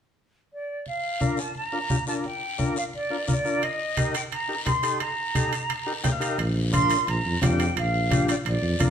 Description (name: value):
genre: latin, cumbia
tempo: 174 BPM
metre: 4/4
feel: straight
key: Bb major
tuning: A4 = 435 Hz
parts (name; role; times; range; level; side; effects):
- silver concert flute; melody; 0.5-8.9 s; D5 to C6; -27 LUFS; right 2 dB; none
- congas; percussion; 0.9-8.9 s; none; -27 LUFS; equal; none
- guiro; percussion; 0.9-8.9 s; none; -36 LUFS; left 4 dB; none
- combo organ; accompaniment; 1.2-8.9 s; D4 to G5; -30 LUFS; left 2 dB; none
- timbales; percussion; 3.6-8.9 s; none; -33 LUFS; right 7 dB; none
- mellow tuba; bass; 6.4-8.9 s; Bb1 to F2; -25 LUFS; equal; none
room: wet stone room reverb, RT60 1.1 s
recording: band playing live in one room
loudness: -23 LUFS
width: side -8 dB against mid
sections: 0.9-6.4 A section; 6.4-8.9 B section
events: transistor combo organ fill 5.9-6.4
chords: 0.0 N.C.; 0.9 Bb; 3.6 Eb; 6.4 Bb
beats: 0.17 0.51 | 0.86 1.21 1.55 1.90 | 2.24 2.59 2.94 3.28 | 3.63 3.97 4.32 4.66 | 5.01 5.35 5.70 6.04 | 6.39 6.74 7.08 7.42 | 7.77 8.11 8.46 8.80